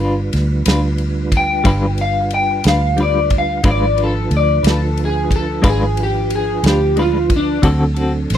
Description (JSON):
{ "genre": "slow blues", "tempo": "60 BPM (dotted quarters)", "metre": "12/8", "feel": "straight", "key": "unclear", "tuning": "A4 = 440 Hz", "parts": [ { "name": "semi-hollow electric guitar", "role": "accompaniment", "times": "0.0-8.2 s", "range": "D3 to B4", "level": "-19 LUFS", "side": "left 2 dB", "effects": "tremolo" }, { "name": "mellow tonewheel organ", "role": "sustained chords", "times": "0.0-8.4 s", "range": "E#3 to B4", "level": "-24 LUFS", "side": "right 4 dB", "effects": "slow rotary speaker, chorus vibrato" }, { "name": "vintage muted fingered electric bass", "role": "bass", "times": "0.0-8.4 s", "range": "G1 to D2", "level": "-18 LUFS", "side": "equal", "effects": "none" }, { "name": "natural country drum kit", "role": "drums", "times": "0.3-8.4 s", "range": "kick drum, ride cymbal, snare drum", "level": "-19 LUFS", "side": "equal", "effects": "none" }, { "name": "electric guitar at the edge of break-up", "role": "melody", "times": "1.4-8.4 s", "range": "D4 to G5", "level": "-18 LUFS", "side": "left 2 dB", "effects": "analog chorus" } ], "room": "little or no reverb", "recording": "dry, close 1970s-style studio recording", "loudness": "-13 LUFS", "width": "side -10 dB against mid", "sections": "0.0-8.4 A section", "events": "clean electric guitar solo 0.0-8.4", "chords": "0.0 G7; 3.6 G#dim7; 7.6 D7" }